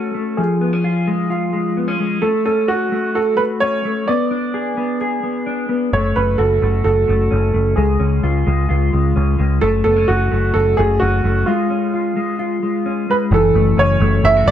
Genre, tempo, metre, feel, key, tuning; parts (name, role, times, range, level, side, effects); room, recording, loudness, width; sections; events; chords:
jangly indie pop; 130 BPM; 4/4; straight; F# harmonic minor; A4 = 438 Hz
warm upright piano; melody; 0.0-14.5 s; E#4 to E5; -18 LUFS; right 3 dB
mellow electric guitar; arpeggios; 0.0-14.5 s; E3 to G#4; -19 LUFS; left 3 dB; analog chorus
deep dub picked electric bass; bass; 5.9-14.5 s; F#1 to C#2; -16 LUFS; equal
light reverb; dark, warm production; -15 LUFS; side -10 dB against mid
0.0-13.3 A section; 13.3-14.5 B section
break 11.5-13.3
0.4 C#; 2.2 F#m; 4.1 G#dim; 5.9 F#m; 7.8 C#; 9.6 F#m; 11.5 C#; 13.3 F#m7